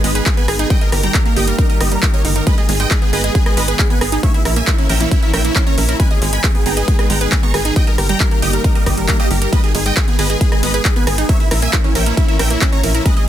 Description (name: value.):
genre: uplifting trance.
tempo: 136 BPM.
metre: 4/4.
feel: straight.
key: G# harmonic minor.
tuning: A4 = 436 Hz.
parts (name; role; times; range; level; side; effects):
big supersaw lead; melody; 0.0-13.3 s; E4 to C#6; -22 LUFS; right 1 dB; phaser, sidechain pumping, ping-pong delay.
analog string pad; sustained chords; 0.0-13.3 s; D#3 to C#4; -24 LUFS; equal; ensemble chorus, sidechain pumping.
wide unison pluck; arpeggios; 0.0-13.2 s; G3 to E5; -23 LUFS; right 5 dB; sidechain pumping, ping-pong delay.
tight sequencer bass; bass; 0.0-13.0 s; G1 to A#1; -19 LUFS; equal; sidechain pumping.
big-room dance drum kit; drums; 0.0-13.3 s; handclaps, hi-hat, ride cymbal, rim click; -21 LUFS; equal; sidechain pumping on hats, sidechain pumping on cymbals.
electronic kick drum; drums; 0.3-13.1 s; none; -15 LUFS; equal; none.
room: little or no reverb.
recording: dense, heavily limited modern master.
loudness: -12 LUFS.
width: side -11 dB against mid.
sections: 0.0-13.3 A section.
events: none.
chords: 0.0 G#m; 0.7 D#/G; 2.5 G#m; 4.2 A#dim; 6.0 G#m; 7.8 D#/G; 9.5 G#m; 11.3 A#dim.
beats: 0.26 | 0.70 1.14 1.58 2.03 | 2.47 2.91 3.35 3.79 | 4.23 4.67 5.12 5.56 | 6.00 6.44 6.88 7.32 | 7.76 8.20 8.64 9.09 | 9.53 9.97 10.41 10.85 | 11.29 11.73 12.17 12.62 | 13.06.